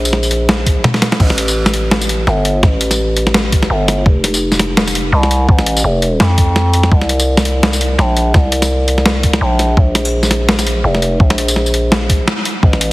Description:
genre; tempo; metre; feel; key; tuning
half-time drum and bass; 168 BPM; 4/4; swing 56% on 16ths, half-time; unclear; A4 = 440 Hz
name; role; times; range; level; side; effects
growling 808-style bass; bass; 0.0-12.9 s; F1 to F2; -14 LUFS; equal; none
boom bap sampler-style drum kit; drums; 0.1-12.9 s; crash cymbal, hi-hat, snare drum, tambourine, toms; -15 LUFS; equal; studio reverb
electronic kick drum; drums; 0.7-12.7 s; none; -11 LUFS; equal; studio reverb
room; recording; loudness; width
light reverb; heavily compressed radio sound, multiband compression; -11 LUFS; side -20 dB against mid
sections
0.0-12.6 A section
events
drop 0.0-12.6; drum fill 0.8-1.2; break 12.3-12.6; band accent 12.3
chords
none

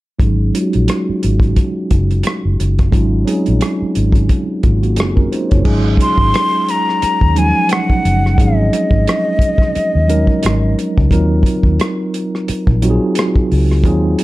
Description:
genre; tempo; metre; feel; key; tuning
R&B, neo-soul; 88 BPM; 4/4; swing 55% on 16ths; unclear; A4 = 442 Hz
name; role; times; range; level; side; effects
mellow tine electric piano; accompaniment; 0.2-14.2 s; F3 to Db5; -17 LUFS; right 1 dB; medium stereo tremolo, low-pass filter
vintage muted fingered electric bass; bass; 0.2-14.1 s; Gb1 to Eb2; -15 LUFS; equal; none
warm soul drum kit; drums; 0.2-14.2 s; crash cymbal, hi-hat, kick drum, rim click; -16 LUFS; equal; none
breathy concert flute; melody; 6.0-10.8 s; Eb5 to C6; -17 LUFS; left 1 dB; plate reverb, tape echo
room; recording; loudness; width
light reverb; dark, warm production; -12 LUFS; side -18 dB against mid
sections
0.2-5.6 A section; 5.6-14.2 B section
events
filter sweep on tine electric piano 0.2-5.6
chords
0.2 Ab7sus4; 11.1 Ebm69

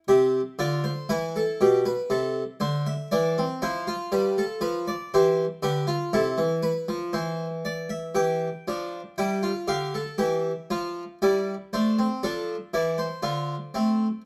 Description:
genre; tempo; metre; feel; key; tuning
classical, baroque-style 3-part fugue for harpsichord; 59 BPM; 4/4; straight; C major; A4 = 437 Hz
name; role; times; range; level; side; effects
harpsichord; solo; 0.0-14.2 s; B2 to G5; -26 LUFS; equal; none
room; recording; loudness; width
light reverb; none; -26 LUFS; mono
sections
0.1-8.2 A section; 8.2-14.3 B section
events
none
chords
0.1 C; 2.1 Dm7/C; 4.1 G7; 6.1 C; 8.2 Em; 10.2 Am7/E; 12.2 Dm

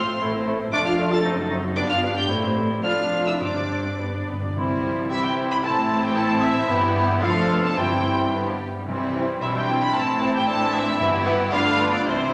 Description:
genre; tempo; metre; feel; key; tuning
quick classical-period movement for symphony orchestra; 102-117 BPM; 2/4; rubato; C major; A4 = 440 Hz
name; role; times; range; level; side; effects
rich studio violin section; melody; 0.0-12.3 s; C5 to A6; -29 LUFS; equal; none
bright clarinet; second line; 0.0-12.3 s; C4 to A4; -33 LUFS; equal; none
clear studio violin section; second line; 0.0-12.3 s; B3 to A5; -32 LUFS; equal; none
dark cor anglais; second line; 0.0-12.3 s; C4 to B4; -35 LUFS; equal; none
mellow hollow small flute group; second line; 0.0-12.3 s; B4 to C6; -34 LUFS; equal; none
rich studio viola section; accompaniment; 0.0-12.3 s; D3 to D5; -32 LUFS; equal; none
warm bassoon; accompaniment; 0.0-12.3 s; F3 to G4; -33 LUFS; equal; none
mellow French horn section; sustained chords; 0.0-11.9 s; A3 to A4; -30 LUFS; equal; none
rich studio cello section; bass; 0.0-12.3 s; C2 to C3; -32 LUFS; equal; none
rich studio double bass section; bass; 0.0-12.3 s; F1 to C2; -34 LUFS; equal; none
timpani; percussion; 3.4-11.5 s; G2 to C3; -35 LUFS; equal; none
room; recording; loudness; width
wet recital hall reverb, RT60 1.5 s; none; -22 LUFS; mono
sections
0.0-4.6 A section; 4.6-12.3 B section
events
timpani fill 4.0-4.6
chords
0.2 Am; 0.7 Dm/F; 1.2 F#dim7; 1.8 G; 2.3 Am7; 2.8 Dm/F; 3.4 Gsus4; 4.0 G; 4.6 C; 5.6 Am; 6.7 Em/G; 7.2 F; 7.8 C/G; 8.3 G; 8.9 C; 10.0 Am; 11.0 Em/G; 11.5 G7

